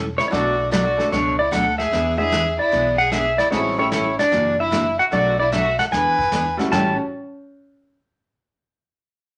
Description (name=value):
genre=country, western swing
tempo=150 BPM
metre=4/4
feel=swing 67% on 8ths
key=A major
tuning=A4 = 439 Hz
part: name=picked steel-string acoustic guitar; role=accompaniment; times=0.0-6.9 s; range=A2 to A4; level=-28 LUFS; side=equal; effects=none
part: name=upright bass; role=bass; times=0.0-7.0 s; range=E1 to E2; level=-32 LUFS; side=equal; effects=none
part: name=pedal steel guitar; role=melody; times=0.2-7.0 s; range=C#5 to A5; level=-22 LUFS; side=equal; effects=none
part: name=clear fiddle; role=second line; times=0.2-7.0 s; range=C#4 to B4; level=-28 LUFS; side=equal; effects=none
part: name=vintage brush drum kit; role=drums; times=0.2-7.0 s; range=brushed snare drum, hi-hat, kick drum, snare drum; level=-32 LUFS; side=equal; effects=none
part: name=bright upright piano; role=accompaniment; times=0.3-7.1 s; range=G3 to A4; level=-28 LUFS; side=equal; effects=none
room=wet studio reverb, RT60 0.6 s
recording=none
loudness=-19 LUFS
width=mono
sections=0.0-6.7 A section; 6.7-8.3 B section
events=none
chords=0.3 Bm7; 1.9 E7; 3.5 A7; 4.3 F#aug7; 5.1 Bm7; 5.9 E7; 6.7 A7